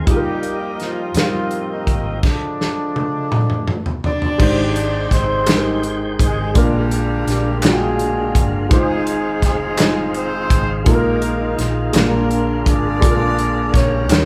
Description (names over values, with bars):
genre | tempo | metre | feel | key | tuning
slow gospel | 56 BPM (dotted quarters) | 6/8 | straight | unclear | A4 = 441 Hz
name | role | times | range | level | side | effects
mellow horn section | melody | 0.0-14.3 s | D3 to D5 | -24 LUFS | equal | none
warm upright piano | accompaniment | 0.0-14.3 s | Ab2 to G5 | -24 LUFS | equal | none
mellow French horn section | sustained chords | 0.0-2.2 s | F3 to Eb4 | -35 LUFS | equal | none
tonewheel organ | sustained chords | 0.0-14.3 s | D3 to G5 | -28 LUFS | equal | slow rotary speaker
hollow-body short-scale fingered electric bass | bass | 0.0-14.3 s | F1 to F2 | -26 LUFS | equal | none
modern studio drum kit | drums | 0.1-14.3 s | crash cymbal, hi-hat, kick drum, snare drum, toms | -20 LUFS | equal | none
group handclap | percussion | 5.5-14.3 s | none | -31 LUFS | equal | none
room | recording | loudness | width
moderate large studio reverb, RT60 1.2 s | band playing live in one room | -18 LUFS | mono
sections
0.0-4.4 A section; 4.4-14.3 B section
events
drum fill 2.2-4.4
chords
0.1 F9sus4; 2.2 Fm6; 4.4 Abmaj7; 6.6 Bb7; 8.7 Fm7; 10.9 Bb7sus4; 11.9 Bb7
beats
| 0.08 1.16 | 2.24 3.32 | 4.40 5.48 | 6.56 7.63 | 8.71 9.79 | 10.87 11.94 | 13.02 14.10